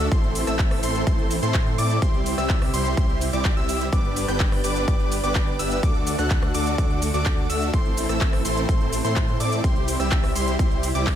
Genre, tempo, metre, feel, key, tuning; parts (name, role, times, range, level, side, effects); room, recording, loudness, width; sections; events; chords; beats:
EDM, festival progressive house; 126 BPM; 4/4; straight; A4 = 440 Hz
lush unison pad; sustained chords; 0.0-11.2 s; C3 to B4; -31 LUFS; equal; chorus, sidechain pumping
plucky unison lead; arpeggios; 0.0-11.2 s; C6 to G6; -30 LUFS; left 1 dB; sidechain pumping, ping-pong delay
big supersaw lead; riff; 0.0-11.2 s; G3 to G5; -27 LUFS; equal; sidechain pumping, ping-pong delay
wide detuned saw bass; bass; 0.0-11.2 s; G1 to A2; -27 LUFS; equal; chorus, sidechain pumping
big-room dance drum kit; drums; 0.0-11.2 s; handclaps, hi-hat, ride cymbal, rim click, shaker; -31 LUFS; equal
electronic kick drum; drums; 0.1-11.2 s; -22 LUFS; equal
little or no reverb; -20 LUFS; side -10 dB against mid
0.0-11.2 A section
0.1 Am; 2.0 C; 3.9 G; 5.8 D; 7.7 Am; 9.6 C
| 0.12 0.59 1.07 1.54 | 2.02 2.50 2.97 3.45 | 3.93 4.40 4.88 5.36 | 5.83 6.31 6.78 7.26 | 7.74 8.21 8.69 9.16 | 9.64 10.12 10.59 11.07